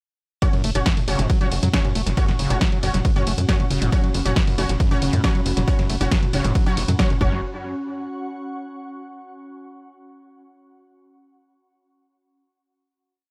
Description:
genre	driving peak-time techno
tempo	137 BPM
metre	4/4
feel	straight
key	unclear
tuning	A4 = 440 Hz
part	screaming distorted acid line	riff	0.4-7.4 s	E#2 to A3	-30 LUFS	equal	distortion, chorus, sidechain pumping, analog delay
part	rave stab	stabs	0.4-7.4 s	C#4 to C#5	-31 LUFS	equal	chorus, built-in reverb, sidechain pumping, analog delay
part	electronic kick drum	drums	0.4-7.3 s	none	-23 LUFS	equal	none
part	punchy analog drum machine	drums	0.4-7.2 s	hi-hat, ride cymbal, snare drum, toms	-28 LUFS	equal	sidechain pumping on hats, sidechain pumping on cymbals, sidechain pumping on toms, analog delay
part	ethereal airy pad	texture	1.6-9.1 s	C#4 to C#6	-35 LUFS	equal	ensemble chorus, built-in reverb, sidechain pumping
part	tight sequencer bass	bass	0.6-7.4 s	F#1 to F#2	-26 LUFS	equal	sidechain pumping
room	little or no reverb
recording	echo-heavy mix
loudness	-21 LUFS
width	mono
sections	0.4-7.4 drop; 7.4-9.2 final chord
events	drop 0.4-7.4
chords	0.4 F#5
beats	| 0.42 0.86 1.30 1.74 | 2.17 2.61 3.05 3.49 | 3.92 4.36 4.80 5.24 | 5.68 6.11 6.55 6.99 | 7.43 7.87 8.30 8.74

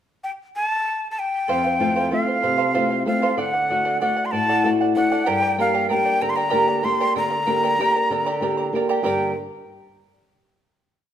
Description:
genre	andean folk, Andean ensemble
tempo	64 BPM (dotted quarters)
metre	6/8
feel	straight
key	G minor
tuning	A4 = 438 Hz
part	breathy bright quena	melody	0.2-9.4 s	F5 to C6	-22 LUFS	left 1 dB	none
part	charango	accompaniment	1.5-9.3 s	G4 to Bb5	-25 LUFS	right 4 dB	none
part	flamenco guitar	accompaniment	1.5-9.3 s	F2 to D5	-23 LUFS	left 1 dB	none
room	wet recital hall reverb, RT60 1.5 s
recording	minimal, uncompressed stereo recording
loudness	-18 LUFS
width	side -10 dB against mid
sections	0.0-1.5 pickup bar; 1.5-9.1 A section; 9.1-10.9 final chord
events	none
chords	0.0 N.C.; 1.5 F; 3.4 D; 5.3 Gm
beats	0.55 | 1.49 2.44 | 3.39 4.33 | 5.28 6.22 | 7.16 8.11 | 9.05

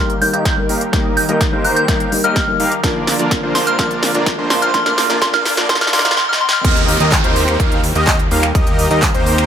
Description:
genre	EDM, festival progressive house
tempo	126 BPM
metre	4/4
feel	straight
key	unclear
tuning	A4 = 440 Hz
part	felt-muted upright piano	accompaniment	0.0-6.1 s	F3 to Bb4	-23 LUFS	left 2 dB	sidechain pumping, tape echo
part	lush unison pad	sustained chords	0.0-9.5 s	D3 to Bb4	-26 LUFS	equal	chorus, sidechain pumping
part	supersaw chords	riff	0.0-9.5 s	Bb3 to F5	-20 LUFS	equal	cassette tape, sidechain pumping, low-pass filter, tape echo
part	fat analog bass	bass	0.0-9.5 s	Bb1 to Eb2	-23 LUFS	equal	none
part	riser, swell and downlifter	sound effects	2.8-9.5 s	none	-26 LUFS	right 1 dB	none
part	big-room dance drum kit	drums	0.1-9.5 s	crash cymbal, finger snaps, handclaps, hi-hat, snare drum	-19 LUFS	equal	none
part	soft synth bell	melody	0.2-6.6 s	C6 to G6	-19 LUFS	equal	chorus, phaser, tape echo
part	electronic kick drum	drums	0.5-9.1 s	none	-18 LUFS	equal	overdrive
part	wide unison lead	arpeggios	6.6-9.5 s	C5 to F5	-21 LUFS	right 1 dB	sidechain pumping, tape echo
room	moderate lush hall reverb, RT60 1.7 s, digital ambience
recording	high-pass filter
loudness	-12 LUFS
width	side -8 dB against mid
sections	0.0-6.6 A section; 6.6-9.5 B section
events	build-up 0.0-6.6; drum fill 0.0-6.2, 6.2-6.6; filter sweep on supersaw synth 0.0-6.6; filter sweep 0.0-6.6; swell 5.7-6.6; drop 6.6-9.5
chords	0.0 Eb; 2.8 Bb; 6.6 Eb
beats	0.46 | 0.93 1.41 1.88 2.36 | 2.84 3.31 3.79 4.26 | 4.74 5.22 5.69 6.17 | 6.64 7.12 7.60 8.07 | 8.55 9.03

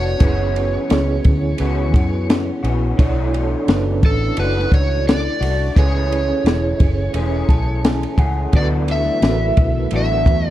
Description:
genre	indie pop, bedroom pop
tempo	86 BPM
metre	4/4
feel	swing 60% on 16ths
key	D lydian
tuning	A4 = 440 Hz
part	overdriven slide guitar	melody	0.0-10.5 s	A4 to E5	-24 LUFS	right 2 dB	wide subtle chorus, tape echo
part	electric guitar through a small old amp	accompaniment	0.0-10.5 s	F#2 to G#4	-25 LUFS	left 4 dB	ensemble chorus, warbly pitch drift
part	mellow reed electric piano	accompaniment	0.0-10.5 s	C#4 to A5	-26 LUFS	right 5 dB	fast tremolo, cassette tape
part	vintage muted fingered electric bass	bass	0.0-10.5 s	E1 to F#2	-20 LUFS	equal	none
part	compact cocktail drum kit	drums	0.2-10.5 s	hi-hat, kick drum, ride cymbal, snare drum	-16 LUFS	equal	none
part	ensemble organ-string	sustained chords	8.5-10.5 s	D3 to E4	-28 LUFS	equal	ensemble chorus
room	light reverb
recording	dark, warm production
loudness	-15 LUFS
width	side -14 dB against mid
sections	0.0-10.5 A section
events	reed electric piano fill 7.1-8.5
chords	0.2 F#7sus4; 3.0 Bm11; 5.8 Amaj7; 8.5 D69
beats	| 0.20 0.90 1.59 2.29 | 2.98 3.68 4.37 5.07 | 5.76 6.45 7.15 7.84 | 8.53 9.23 9.92

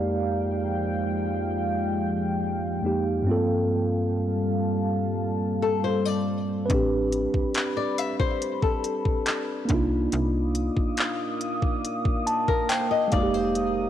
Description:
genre	contemporary R&B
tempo	70 BPM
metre	4/4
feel	straight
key	unclear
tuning	A4 = 440 Hz
part	mellow tine electric piano	accompaniment	0.0-13.9 s	F2 to A5	-26 LUFS	right 1 dB	slow stereo tremolo
part	deep dark ambient pad	sustained chords	0.0-13.9 s	F3 to Eb6	-30 LUFS	equal	chorus, built-in reverb
part	flamenco guitar	arpeggios	5.6-13.9 s	A4 to E5	-27 LUFS	left 7 dB	tape echo
part	slap-like FM bass	bass	6.7-13.9 s	F1 to C2	-29 LUFS	equal	none
part	smooth R&B drum kit	drums	6.7-13.8 s	handclaps, hi-hat, kick drum	-27 LUFS	equal	cassette tape
room	light reverb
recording	home recording on cassette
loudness	-23 LUFS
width	side -10 dB against mid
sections	0.0-13.9 A section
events	tine electric piano fill 11.8-13.6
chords	0.0 Fm11; 3.3 Gm11; 6.7 Am11; 9.7 Cm11; 13.1 Fm11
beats	0.70 1.55 2.41 | 3.27 4.12 4.98 5.84 | 6.70 7.55 8.41 9.27 | 10.12 10.98 11.84 12.70 | 13.55

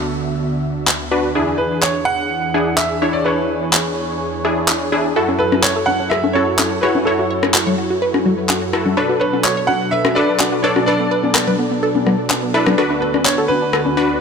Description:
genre	progressive house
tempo	126 BPM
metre	4/4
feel	straight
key	F# minor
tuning	A4 = 440 Hz
part	clear grand piano	melody	0.0-14.2 s	A4 to F#5	-21 LUFS	right 2 dB	tape echo
part	filtered supersaw swell	sustained chords	0.0-14.2 s	D2 to A4	-23 LUFS	right 1 dB	none
part	supersaw stab	stabs	0.0-14.2 s	D4 to E5	-20 LUFS	left 1 dB	low-pass filter, tape echo
part	electronic handclaps	drums	0.9-13.4 s	none	-20 LUFS	equal	none
part	wide unison pluck	arpeggios	5.2-14.1 s	B3 to C#5	-22 LUFS	right 2 dB	cassette tape, tape echo
part	electronic rim click and congas	percussion	5.5-13.9 s	none	-20 LUFS	left 5 dB	none
room	moderate huge ambient reverb, RT60 4.6 s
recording	none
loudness	-14 LUFS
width	side -6 dB against mid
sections	0.0-14.2 A section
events	filter sweep on supersaw synth 0.0-14.2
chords	0.0 D6; 1.4 E7; 5.2 F#m7; 9.0 Bm7; 12.8 D6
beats	0.40 0.88 | 1.35 1.83 2.31 2.78 | 3.26 3.73 4.21 4.69 | 5.16 5.64 6.12 6.59 | 7.07 7.54 8.02 8.50 | 8.97 9.45 9.92 10.40 | 10.88 11.35 11.83 12.30 | 12.78 13.26 13.73

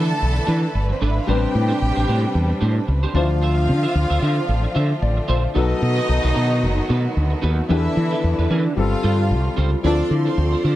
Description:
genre	disco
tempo	112 BPM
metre	4/4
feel	swing 56% on 16ths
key	unclear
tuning	A4 = 440 Hz
part	warm studio violin section	second line	0.0-10.6 s	C4 to A5	-27 LUFS	right 1 dB	none
part	electric guitar at the edge of break-up	accompaniment	0.0-10.8 s	D4 to E5	-28 LUFS	right 6 dB	ensemble chorus
part	warm grand piano	accompaniment	0.0-10.8 s	E3 to E5	-26 LUFS	left 6 dB	none
part	clear studio string section	sustained chords	0.0-10.8 s	C3 to C6	-28 LUFS	right 1 dB	none
part	mellow fretless electric bass	bass	0.0-10.8 s	F#1 to E3	-19 LUFS	equal	none
part	breathy mellow wooden-headed alto flute	melody	9.8-10.8 s	E4 to F4	-22 LUFS	equal	none
room	little or no reverb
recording	dry, close 1970s-style studio recording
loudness	-17 LUFS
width	side -14 dB against mid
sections	0.0-9.8 A section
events	grand piano fill 4.5-5.6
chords	0.0 E7sus4; 1.3 Am11; 3.1 Dm9; 5.6 B7; 7.7 E7sus4; 8.8 G9sus4; 9.8 Dm7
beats	0.22 0.75 | 1.28 1.81 2.35 2.88 | 3.42 3.95 4.48 5.02 | 5.55 6.09 6.63 7.16 | 7.70 8.23 8.77 9.30 | 9.84 10.38

